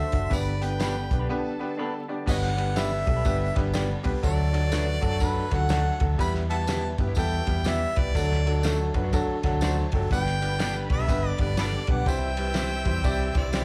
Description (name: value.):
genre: uptempo 1960s-style soul.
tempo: 122 BPM.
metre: 4/4.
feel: swing 63% on 8ths.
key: G major.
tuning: A4 = 440 Hz.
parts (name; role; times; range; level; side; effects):
clear harmonica; melody; 0.0-13.6 s; A4 to B5; -33 LUFS; equal; slapback echo.
warm studio violin section; second line; 0.0-2.3, 10.1-13.6 s; A4 to E6; -43 LUFS; equal; slapback echo.
bright upright piano; accompaniment; 0.0-13.6 s; F#3 to A5; -33 LUFS; equal; slapback echo.
percussive tonewheel organ; sustained chords; 0.0-13.6 s; D3 to E4; -41 LUFS; equal; none.
vintage muted fingered electric bass; bass; 0.1-13.6 s; F#1 to G2; -30 LUFS; equal; none.
warm soul drum kit; drums; 0.1-13.6 s; crash cymbal, hi-hat, kick drum, ride cymbal, snare drum; -31 LUFS; equal; none.
tambourine; percussion; 0.3-13.6 s; none; -44 LUFS; equal; none.
semi-hollow electric guitar; stabs; 0.8-13.6 s; A3 to B4; -39 LUFS; equal; slapback echo.
room: light reverb.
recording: live gig heard through the venue's PA, club reverb, vinyl crackle.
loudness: -26 LUFS.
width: mono.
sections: 0.0-2.3 A section; 2.3-13.6 A section.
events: break 1.3-2.3; upright piano fill 9.1-10.1.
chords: 0.3 G; 4.2 D; 6.2 Em; 8.2 D; 10.1 G; 12.1 C.